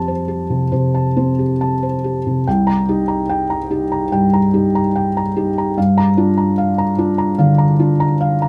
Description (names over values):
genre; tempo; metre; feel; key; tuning
neoclassical minimalist piano; 67-74 BPM; 4/4; rubato; C dorian; A4 = 440 Hz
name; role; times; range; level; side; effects
felt-muted upright piano; solo; 0.0-8.5 s; C2 to Bb5; -16 LUFS; equal; none
room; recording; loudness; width
light reverb; none; -16 LUFS; mono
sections
0.0-2.5 A section; 2.5-8.5 B section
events
none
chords
0.0 Fadd9; 2.5 Cm7; 5.8 Gm7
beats
0.72 1.59 | 2.46 3.30 4.13 4.96 | 5.77 6.58 7.40 8.21